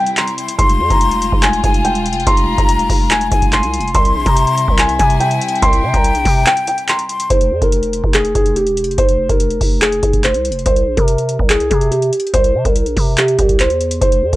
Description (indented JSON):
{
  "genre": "hip hop, trap",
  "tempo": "143 BPM",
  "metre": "4/4",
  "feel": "half-time",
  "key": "F harmonic minor",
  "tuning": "A4 = 441 Hz",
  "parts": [
    { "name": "felt-muted upright piano", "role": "melody", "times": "0.0-14.4 s", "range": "G4 to C6", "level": "-16 LUFS", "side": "equal", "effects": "low-pass filter" },
    { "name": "warm chamber string section", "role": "sustained chords", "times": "0.0-7.3 s", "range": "C3 to F4", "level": "-24 LUFS", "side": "equal", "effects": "none" },
    { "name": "booming analog drum machine", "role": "drums", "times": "0.1-14.4 s", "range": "handclaps, hi-hat, kick drum", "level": "-16 LUFS", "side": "equal", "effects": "none" },
    { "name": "breathy jazz flute", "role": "second line", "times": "0.2-7.3 s", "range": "G5 to C6", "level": "-20 LUFS", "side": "left 4 dB", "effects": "tape echo" },
    { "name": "growling 808-style bass", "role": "bass", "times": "0.6-14.4 s", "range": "E1 to C3", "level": "-20 LUFS", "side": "equal", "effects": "none" }
  ],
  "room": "little or no reverb",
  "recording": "dry, gritty hardware recording",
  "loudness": "-12 LUFS",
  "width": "side -17 dB against mid",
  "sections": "0.0-7.3 A section; 7.3-14.4 B section",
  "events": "break 0.0-0.6, 6.5-7.3",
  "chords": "0.0 C; 0.6 Fmadd9; 3.9 C; 7.3 F5; 10.7 C5"
}